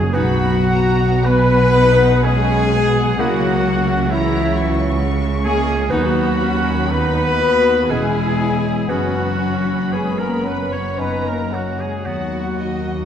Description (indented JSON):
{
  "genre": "classical, slow romantic movement for symphony orchestra",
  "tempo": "52-68 BPM",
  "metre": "3/4",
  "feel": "rubato",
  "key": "B major",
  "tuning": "A4 = 441 Hz",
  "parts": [
    { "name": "clear clarinet", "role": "second line", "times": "0.0-12.5 s", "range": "B3 to F#4", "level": "-30 LUFS", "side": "left 1 dB", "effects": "none" },
    { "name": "clear oboe", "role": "second line", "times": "0.0-12.8 s", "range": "E4 to C#5", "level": "-28 LUFS", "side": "right 2 dB", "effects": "none" },
    { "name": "large flute ensemble", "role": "second line", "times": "0.0-12.9 s", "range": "E5 to C#6", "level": "-29 LUFS", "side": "left 1 dB", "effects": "none" },
    { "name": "rich studio violin section", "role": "second line", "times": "0.0-13.1 s", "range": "E4 to C#5", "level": "-28 LUFS", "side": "left 2 dB", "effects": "none" },
    { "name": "clear studio viola section", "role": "accompaniment", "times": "0.0-11.5 s", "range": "F#3 to F#4", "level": "-28 LUFS", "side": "equal", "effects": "none" },
    { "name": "dark French horn section", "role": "sustained chords", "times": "0.0-13.1 s", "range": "E3 to C#4", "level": "-22 LUFS", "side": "left 4 dB", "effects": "none" },
    { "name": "concert harp", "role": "arpeggios", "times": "0.0-13.1 s", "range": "F#2 to E6", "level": "-28 LUFS", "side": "left 8 dB", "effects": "none" },
    { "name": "dark trumpet section", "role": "stabs", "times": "0.0-13.1 s", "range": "E4 to C#5", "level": "-21 LUFS", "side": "left 1 dB", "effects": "none" },
    { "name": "rich studio double bass section", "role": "bass", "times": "0.0-13.1 s", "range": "E1 to D#2", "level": "-22 LUFS", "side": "right 3 dB", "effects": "none" },
    { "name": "mellow bassoon", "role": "accompaniment", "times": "0.1-12.5 s", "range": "F#3 to D#4", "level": "-28 LUFS", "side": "right 2 dB", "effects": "none" },
    { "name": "rich studio cello section", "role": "bass", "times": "0.1-13.1 s", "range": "D#2 to C#3", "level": "-25 LUFS", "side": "right 3 dB", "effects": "none" },
    { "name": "warm studio violin section", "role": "melody", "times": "0.2-13.1 s", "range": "D#5 to C#6", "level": "-32 LUFS", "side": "left 2 dB", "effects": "none" }
  ],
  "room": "wet scoring stage reverb, RT60 1.9 s",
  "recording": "dark, warm production",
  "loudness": "-15 LUFS",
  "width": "side -9 dB against mid",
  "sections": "0.1-13.1 A section",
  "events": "none",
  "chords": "0.1 B; 3.2 F#7/C#; 5.9 B/D#; 7.9 C#m/E; 8.9 F#sus4; 11.0 F#; 12.1 B/D#"
}